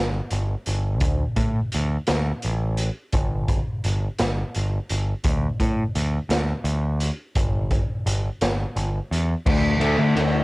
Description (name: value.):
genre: quiet-loud alternative rock.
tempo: 57 BPM (dotted quarters).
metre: 6/8.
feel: straight.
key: unclear.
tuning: A4 = 443 Hz.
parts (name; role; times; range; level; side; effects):
growling picked electric bass; bass; 0.0-10.4 s; G1 to A2; -23 LUFS; equal; overdrive.
raw garage drum kit; drums; 0.3-10.3 s; crash cymbal, hi-hat, kick drum, ride cymbal, snare drum; -25 LUFS; equal; cassette tape.
fuzz guitar; riff; 9.5-10.4 s; D3 to A3; -22 LUFS; left 2 dB; distortion, cassette tape.
room: light reverb.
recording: home recording on cassette.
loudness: -21 LUFS.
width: side -21 dB against mid.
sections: 0.0-9.5 A section.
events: none.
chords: 0.0 N.C.; 1.0 D5; 3.1 N.C.; 5.2 D5; 7.4 N.C.; 9.5 D5.